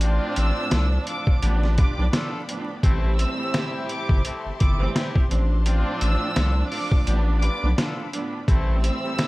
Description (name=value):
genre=hip hop, boom-bap hip-hop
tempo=85 BPM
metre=4/4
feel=swing 58% on 16ths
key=A minor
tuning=A4 = 441 Hz
part: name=warm studio string section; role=accompaniment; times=0.0-9.3 s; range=A2 to D4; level=-30 LUFS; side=right 3 dB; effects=high-pass filter, low-pass filter
part: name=bright studio string section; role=sustained chords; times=0.0-9.3 s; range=F4 to C6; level=-39 LUFS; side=left 2 dB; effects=high-pass filter, low-pass filter
part: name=clear horn section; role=stabs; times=0.0-9.3 s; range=A3 to B4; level=-33 LUFS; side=left 3 dB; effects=high-pass filter, low-pass filter, analog delay
part: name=saturated sub bass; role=bass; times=0.0-8.9 s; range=G1 to C2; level=-21 LUFS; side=equal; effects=none
part: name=trip hop sampler-style drum kit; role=drums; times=0.0-9.3 s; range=hi-hat, kick drum, snare drum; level=-22 LUFS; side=equal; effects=none
part: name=warm symphonic violin section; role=melody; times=0.4-9.3 s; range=D6 to E6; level=-32 LUFS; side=equal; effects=high-pass filter, low-pass filter, analog delay
room=little or no reverb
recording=vinyl crackle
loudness=-20 LUFS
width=side -20 dB against mid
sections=0.0-9.3 A section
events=kick muted 7.1-8.5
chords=0.0 Dm7/A; 1.4 G7/A; 2.8 Am7; 5.3 Dm7/A; 7.1 G7/A; 8.5 Am7